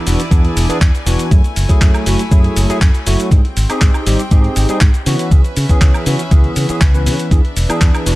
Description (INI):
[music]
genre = nu-disco, nu disco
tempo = 120 BPM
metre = 4/4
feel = straight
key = E mixolydian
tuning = A4 = 440 Hz
[part]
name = barky tine electric piano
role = accompaniment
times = 0.0-8.2 s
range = E3 to B4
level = -19 LUFS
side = equal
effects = overdrive, ensemble chorus, sidechain pumping, analog delay
[part]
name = rich chamber string section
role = sustained chords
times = 0.0-8.2 s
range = A3 to G#5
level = -26 LUFS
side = left 1 dB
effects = sidechain pumping
[part]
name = fingered electric bass with an envelope filter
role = bass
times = 0.1-8.1 s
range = E1 to C#3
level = -16 LUFS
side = equal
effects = tube saturation, sidechain pumping
[part]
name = dusty soul sampler-style drum kit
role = drums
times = 0.1-8.2 s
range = handclaps, hi-hat, shaker, woodblock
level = -22 LUFS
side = equal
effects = none
[part]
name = electronic kick drum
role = drums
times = 0.3-7.9 s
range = none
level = -10 LUFS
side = equal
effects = none
[sound]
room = digital ambience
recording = none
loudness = -11 LUFS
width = side -18 dB against mid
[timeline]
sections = 0.0-8.2 A section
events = none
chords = 0.0 E7; 1.3 F#m9; 3.3 G#maj7; 5.1 C#m7; 7.3 E7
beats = 0.32 0.82 | 1.32 1.82 2.32 2.82 | 3.32 3.82 4.32 4.82 | 5.32 5.82 6.32 6.82 | 7.32 7.82